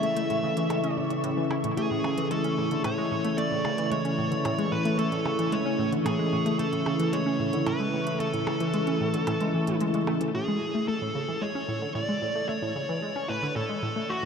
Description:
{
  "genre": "ambient, sequencer-driven space music",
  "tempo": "112 BPM",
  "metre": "4/4",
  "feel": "straight",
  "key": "A major",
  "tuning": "A4 = 441 Hz",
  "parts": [
    { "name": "dark smooth lead guitar", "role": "melody", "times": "0.0-14.3 s", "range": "F#4 to E5", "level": "-31 LUFS", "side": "equal", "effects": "overdrive, shimmer reverb, ping-pong delay" },
    { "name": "lush unison pad", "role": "sustained chords", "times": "0.0-14.3 s", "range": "C#3 to A4", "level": "-28 LUFS", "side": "equal", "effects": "chorus, shimmer reverb" },
    { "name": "analog pluck", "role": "riff", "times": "0.0-14.3 s", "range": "A2 to E4", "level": "-31 LUFS", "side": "equal", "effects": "chorus, ping-pong delay" },
    { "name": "electronic hi-hat and percussion blips", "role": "percussion", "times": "0.0-10.3 s", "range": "none", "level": "-40 LUFS", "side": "right 2 dB", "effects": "ping-pong delay" },
    { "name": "pulsing gated texture", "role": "texture", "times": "0.0-14.3 s", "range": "C#6", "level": "-38 LUFS", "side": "right 3 dB", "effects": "chorus, built-in reverb, shimmer reverb" }
  ],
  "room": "wet huge ambient reverb, RT60 7.7 s",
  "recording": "dark, warm production",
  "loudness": "-25 LUFS",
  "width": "side -6 dB against mid",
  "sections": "0.0-10.3 A section; 10.3-14.3 A section",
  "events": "none",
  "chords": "0.0 A"
}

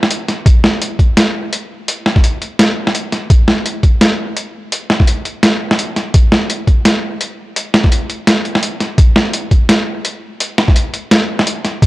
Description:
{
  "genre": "drum and bass",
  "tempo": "169 BPM",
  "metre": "4/4",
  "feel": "swing 57% on 16ths, half-time",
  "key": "none",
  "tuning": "none",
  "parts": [
    { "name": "boom bap sampler-style drum kit", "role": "drums", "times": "0.0-11.9 s", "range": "hi-hat, snare drum", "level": "-13 LUFS", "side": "equal", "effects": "overdrive" },
    { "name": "electronic kick drum", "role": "drums", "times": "0.5-11.9 s", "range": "none", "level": "-9 LUFS", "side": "equal", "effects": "overdrive" }
  ],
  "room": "little or no reverb",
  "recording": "dry, gritty hardware recording, transformer saturation, cassette tape",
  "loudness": "-11 LUFS",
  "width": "side -18 dB against mid",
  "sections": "0.0-11.9 A section",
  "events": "none",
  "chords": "none"
}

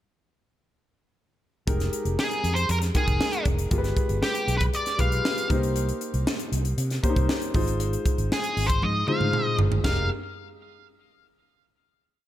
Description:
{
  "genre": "polished 1980s jazz-funk pop",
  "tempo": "118 BPM",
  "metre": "4/4",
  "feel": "straight",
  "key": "F minor",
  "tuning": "A4 = 440 Hz",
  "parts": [
    { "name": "warm concert grand piano", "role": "accompaniment", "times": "1.7-10.1 s", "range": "Ab3 to G5", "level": "-30 LUFS", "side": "left 2 dB", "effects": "lush chorus" },
    { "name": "fretless electric bass", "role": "bass", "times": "1.7-10.1 s", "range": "F1 to C3", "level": "-26 LUFS", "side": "equal", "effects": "none" },
    { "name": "crisp fusion drum kit", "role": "drums", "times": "1.7-10.0 s", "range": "china cymbal, hi-hat, kick drum, snare drum, toms", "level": "-26 LUFS", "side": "equal", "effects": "gated reverb" },
    { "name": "octave-fuzz lead guitar", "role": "melody", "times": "2.2-10.1 s", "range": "G4 to F5", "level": "-28 LUFS", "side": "equal", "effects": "distortion" }
  ],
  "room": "small room ambience",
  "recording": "none",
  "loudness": "-22 LUFS",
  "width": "side -13 dB against mid",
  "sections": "1.7-9.8 verse; 9.8-11.9 final chord",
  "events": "drum fill 8.8-9.8",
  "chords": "1.7 Fm11; 3.7 G7b9; 5.5 Cm7; 7.5 Ab6; 9.8 Fm11"
}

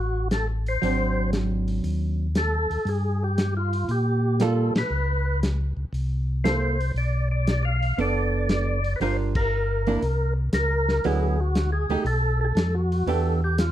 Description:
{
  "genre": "soul jazz organ trio",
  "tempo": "118 BPM",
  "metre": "4/4",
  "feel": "swing 69% on 8ths",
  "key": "unclear",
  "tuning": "A4 = 439 Hz",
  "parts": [
    { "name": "percussive tonewheel organ", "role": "melody", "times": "0.0-13.7 s", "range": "F4 to F5", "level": "-27 LUFS", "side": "equal", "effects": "slow rotary speaker, overdrive, chorus vibrato, plate reverb" },
    { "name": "mellow tonewheel organ", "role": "bass", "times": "0.0-13.7 s", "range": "F#1 to Bb2", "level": "-24 LUFS", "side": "equal", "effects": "slow rotary speaker" },
    { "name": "warm soul drum kit", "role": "drums", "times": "0.3-13.7 s", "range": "crash cymbal, hi-hat, kick drum, ride cymbal, snare drum", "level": "-27 LUFS", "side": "equal", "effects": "none" },
    { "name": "archtop guitar, miked and amplified", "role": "accompaniment", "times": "0.8-13.4 s", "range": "D3 to Bb4", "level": "-27 LUFS", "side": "right 5 dB", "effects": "none" }
  ],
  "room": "light reverb",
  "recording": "dark, warm production",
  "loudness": "-22 LUFS",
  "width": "side -12 dB against mid",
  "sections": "0.0-13.7 A section",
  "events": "band accent 4.7, 9.3",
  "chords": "0.0 D (rootless); 0.8 G#7#11; 2.9 Gm9; 4.9 Bsus2/C#; 5.9 C6; 7.0 Bm7; 9.0 Gm7; 10.0 Bbmadd9/C; 11.0 D69; 12.1 F#mmaj7; 13.1 Em7"
}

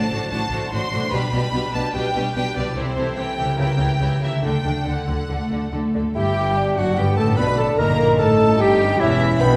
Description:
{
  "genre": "classical, dramatic, fast romantic movement for symphony orchestra",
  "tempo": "147 BPM",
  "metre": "4/4",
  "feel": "rubato",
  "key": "G major",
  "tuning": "A4 = 441 Hz",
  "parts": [
    { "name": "clear symphonic violin section", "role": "melody", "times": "0.0-9.4 s", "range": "E4 to C6", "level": "-30 LUFS", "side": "equal", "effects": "none" },
    { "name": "rich symphonic violin section", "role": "second line", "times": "0.0-9.6 s", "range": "F#4 to B5", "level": "-33 LUFS", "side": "equal", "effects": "none" },
    { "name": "rich symphonic viola section", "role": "accompaniment", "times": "0.0-9.4 s", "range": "D3 to E4", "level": "-30 LUFS", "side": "equal", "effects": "none" },
    { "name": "concert harp", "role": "arpeggios", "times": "0.0-9.6 s", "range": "G2 to C5", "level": "-29 LUFS", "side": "equal", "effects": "none" },
    { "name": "rich chamber double bass section", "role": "bass", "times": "0.1-9.6 s", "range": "E1 to D2", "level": "-29 LUFS", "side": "equal", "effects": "none" },
    { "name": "rich symphonic cello section", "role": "bass", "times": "0.1-9.6 s", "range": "E2 to D3", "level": "-29 LUFS", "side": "equal", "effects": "none" },
    { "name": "silver concert flute", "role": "second line", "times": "6.1-9.6 s", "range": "E5 to B5", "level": "-29 LUFS", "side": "equal", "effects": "none" },
    { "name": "clear clarinet", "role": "second line", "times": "6.2-9.6 s", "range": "D4 to B4", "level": "-29 LUFS", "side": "equal", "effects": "none" },
    { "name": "warm cor anglais", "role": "second line", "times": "6.2-9.6 s", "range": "E4 to G5", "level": "-30 LUFS", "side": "equal", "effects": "none" },
    { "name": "warm bassoon", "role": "accompaniment", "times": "6.2-9.6 s", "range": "B3 to E4", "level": "-26 LUFS", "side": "equal", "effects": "none" },
    { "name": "warm French horn section", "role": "sustained chords", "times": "6.2-9.6 s", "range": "E4 to B4", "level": "-24 LUFS", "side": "equal", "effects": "none" },
    { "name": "timpani", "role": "percussion", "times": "6.2-8.4 s", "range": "G2", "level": "-32 LUFS", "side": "equal", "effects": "none" }
  ],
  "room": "wet recital hall reverb, RT60 1.3 s",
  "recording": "recorded in a church or concert hall",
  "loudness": "-20 LUFS",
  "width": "mono",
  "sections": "0.0-6.2 A section; 6.2-9.6 B section",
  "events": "none",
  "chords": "0.0 D7/A; 1.1 G/B; 2.8 Am7/C; 3.6 C#dim7; 4.4 D; 6.2 G; 7.8 Gdim7"
}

